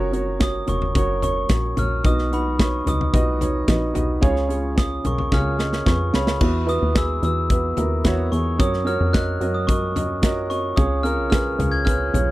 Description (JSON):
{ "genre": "piano-driven pop", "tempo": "110 BPM", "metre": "4/4", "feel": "straight", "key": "F# major", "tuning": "A4 = 438 Hz", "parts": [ { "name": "warm upright piano", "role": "accompaniment", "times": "0.0-12.3 s", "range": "B2 to F#5", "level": "-24 LUFS", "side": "right 2 dB", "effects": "none" }, { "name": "plucky analog bass", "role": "bass", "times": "0.0-12.3 s", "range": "E#1 to F#2", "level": "-24 LUFS", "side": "equal", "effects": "none" }, { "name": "modern studio drum kit", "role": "drums", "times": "0.1-12.3 s", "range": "crash cymbal, hi-hat, kick drum, snare drum, toms", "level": "-22 LUFS", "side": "equal", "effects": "none" }, { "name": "glockenspiel with hard plastic mallets", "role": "melody", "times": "0.4-12.3 s", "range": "B5 to G#6", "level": "-27 LUFS", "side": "left 2 dB", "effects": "slapback echo" } ], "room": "little or no reverb", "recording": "dry, close 1970s-style studio recording", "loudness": "-18 LUFS", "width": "side -17 dB against mid", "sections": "0.0-6.4 A section; 6.4-12.3 B section", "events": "drum fill 5.3-6.4", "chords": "0.0 F#; 2.0 B; 4.2 C#; 6.4 Esus2; 8.6 F#; 10.8 C#", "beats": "0.41 0.95 1.50 | 2.04 2.59 3.14 3.68 | 4.23 4.78 5.32 5.87 | 6.41 6.96 7.50 8.05 | 8.60 9.14 9.69 10.24 | 10.78 11.33 11.87" }